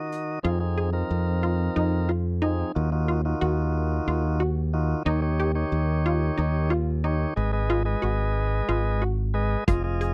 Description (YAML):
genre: progressive instrumental, band music in an uneven meter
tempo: 182 BPM (eighths)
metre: 7/8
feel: straight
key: Eb minor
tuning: A4 = 439 Hz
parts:
  - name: tonewheel organ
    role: accompaniment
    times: 0.0-10.1 s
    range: Eb3 to Eb5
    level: -31 LUFS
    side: equal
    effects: overdrive
  - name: resonant blip pluck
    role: arpeggios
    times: 0.0-10.1 s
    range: Eb4 to Ab4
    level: -32 LUFS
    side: equal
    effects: chorus
  - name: vintage brush drum kit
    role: drums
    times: 0.1-0.3, 9.7-10.1 s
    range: hi-hat, kick drum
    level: -29 LUFS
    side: equal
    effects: none
  - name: modern bright fingered electric bass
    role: bass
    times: 0.4-10.1 s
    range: F1 to F2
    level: -27 LUFS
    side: equal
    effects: none
room: little or no reverb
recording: dry, close 1970s-style studio recording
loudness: -25 LUFS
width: mono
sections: 0.4-10.1 A section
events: none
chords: 0.4 Fm7; 2.8 Ebmadd9; 5.1 Eb7; 7.4 Abm